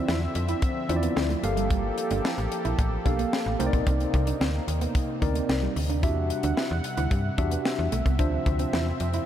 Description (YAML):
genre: early-eighties boogie funk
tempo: 111 BPM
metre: 4/4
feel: straight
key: E phrygian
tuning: A4 = 440 Hz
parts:
  - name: tine electric piano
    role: accompaniment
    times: 0.0-8.9 s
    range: Bb3 to F5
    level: -31 LUFS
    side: left 1 dB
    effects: medium stereo tremolo
  - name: warm analog pad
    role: sustained chords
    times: 0.0-9.3 s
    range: C3 to F#5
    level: -32 LUFS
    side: equal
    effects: chorus
  - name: clean electric guitar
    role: riff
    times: 0.0-9.2 s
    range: G3 to E4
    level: -34 LUFS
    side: right 7 dB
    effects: lush chorus
  - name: slap-like FM bass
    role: bass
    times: 0.1-9.2 s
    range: G1 to G2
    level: -28 LUFS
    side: equal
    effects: none
  - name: tight funk drum kit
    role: drums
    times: 0.1-9.3 s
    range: hi-hat, kick drum, snare drum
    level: -28 LUFS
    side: equal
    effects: none
room: light reverb, small room ambience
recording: none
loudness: -23 LUFS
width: side -10 dB against mid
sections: 0.0-9.3 A section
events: none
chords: 0.0 Dm9; 1.4 Gm9; 3.6 Cm9; 6.0 Em9; 8.2 Dm9